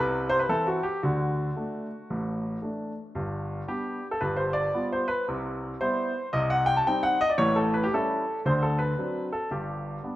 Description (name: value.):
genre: jazz, stride piano.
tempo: 113 BPM.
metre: 4/4.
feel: swing 64% on 8ths.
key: G major.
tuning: A4 = 440 Hz.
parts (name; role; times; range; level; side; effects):
clear grand piano; solo; 0.0-10.2 s; G1 to A5; -25 LUFS; equal; none.
room: moderate lush hall reverb, RT60 2.1 s.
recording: rough home demo mix.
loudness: -25 LUFS.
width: side -15 dB against mid.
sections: 0.0-10.2 A section.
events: none.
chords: 0.0 C; 1.0 D; 3.2 G; 4.2 G7; 5.3 Cmaj7; 6.3 Cm; 7.4 A7; 8.5 D7; 9.5 G.